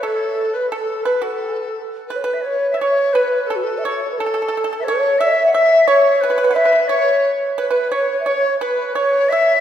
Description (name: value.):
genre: chinese traditional, Chinese chamber ensemble.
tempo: 88 BPM.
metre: 2/4.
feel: rubato.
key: A gong mode.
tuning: A4 = 440 Hz.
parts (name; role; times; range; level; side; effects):
breathy low xiao; melody; 0.0-9.6 s; F#4 to E5; -17 LUFS; equal; none.
bright reedy large dizi; second line; 0.0-9.6 s; A4 to F#5; -21 LUFS; left 3 dB; none.
pipa; second line; 0.0-9.6 s; A4 to E5; -22 LUFS; right 2 dB; none.
room: wet church reverb, RT60 2.8 s.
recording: recorded in a church or concert hall.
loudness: -15 LUFS.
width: side -10 dB against mid.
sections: 0.0-2.8 A section; 2.8-9.6 B section.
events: none.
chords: none.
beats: | 0.04 0.71 | 1.39 2.09 | 2.79 3.49 | 4.18 4.87 | 5.54 6.22 | 6.89 7.58 | 8.27 8.96.